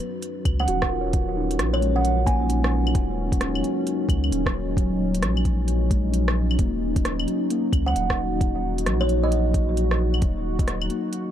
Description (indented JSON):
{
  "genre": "future garage",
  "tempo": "132 BPM",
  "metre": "4/4",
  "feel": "swing 64% on 16ths",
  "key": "Eb minor",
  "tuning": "A4 = 439 Hz",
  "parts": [
    { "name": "muted felt-like synth keys", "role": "accompaniment", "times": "0.0-11.3 s", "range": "Gb3 to Db5", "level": "-29 LUFS", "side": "left 2 dB", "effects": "chorus, sidechain pumping, tape echo" },
    { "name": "deep dark ambient pad", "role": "sustained chords", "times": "0.0-11.3 s", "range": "F#3 to F#4", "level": "-28 LUFS", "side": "equal", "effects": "chorus, built-in reverb, sidechain pumping" },
    { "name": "organic electronic drum kit", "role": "drums", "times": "0.0-11.2 s", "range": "claves, hi-hat, rim click", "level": "-29 LUFS", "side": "equal", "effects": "none" },
    { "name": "soft dub sub bass", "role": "bass", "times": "0.5-10.9 s", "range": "Eb1 to Db2", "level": "-24 LUFS", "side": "equal", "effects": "sidechain pumping" },
    { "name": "electronic kick drum", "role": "drums", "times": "0.5-10.7 s", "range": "none", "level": "-23 LUFS", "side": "equal", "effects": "overdrive" },
    { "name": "kalimba", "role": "melody", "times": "0.6-2.9, 7.9-9.9 s", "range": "Db5 to Ab5", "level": "-29 LUFS", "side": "right 3 dB", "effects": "vintage 12-bit sampler grit, analog delay" }
  ],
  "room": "light reverb, digital ambience",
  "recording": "none",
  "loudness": "-20 LUFS",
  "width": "side -10 dB against mid",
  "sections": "0.0-11.3 A section",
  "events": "filter sweep on synth keys 0.0-11.3",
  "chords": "0.0 Ebm11; 6.6 B/D# (rootless)",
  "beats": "0.23 0.68 | 1.14 1.59 2.04 2.50 | 2.95 3.41 3.86 4.32 | 4.77 5.23 5.68 6.13 | 6.59 7.04 7.50 7.95 | 8.41 8.86 9.32 9.77 | 10.23 10.68 11.13"
}